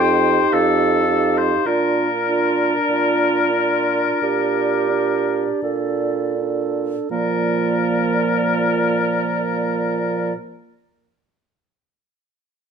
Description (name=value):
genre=classical, slow romantic movement for wind quintet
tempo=39-58 BPM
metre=4/4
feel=rubato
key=Bb major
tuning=A4 = 440 Hz
part: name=silver concert flute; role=melody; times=0.0-10.3 s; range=D5 to G5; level=-27 LUFS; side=left 5 dB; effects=none
part: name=warm oboe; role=second line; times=0.0-10.3 s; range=A4 to C5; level=-21 LUFS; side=left 3 dB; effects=none
part: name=warm French horn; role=accompaniment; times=0.0-10.3 s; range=F3 to Eb4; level=-25 LUFS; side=equal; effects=none
part: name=warm clarinet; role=accompaniment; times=0.0-10.3 s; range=Bb3 to A4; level=-23 LUFS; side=right 7 dB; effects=none
part: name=mellow bassoon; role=bass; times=0.0-10.3 s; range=F2 to Bb2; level=-23 LUFS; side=right 4 dB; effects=none
room=moderate stone room reverb, RT60 1.1 s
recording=none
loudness=-17 LUFS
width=side -6 dB against mid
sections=0.0-7.1 A section; 7.1-12.6 B section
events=slowing down 0.0-7.1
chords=0.0 Fsus2; 1.7 Bb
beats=0.52 | 1.66 2.89 4.22 5.63 | 7.11 8.47 9.84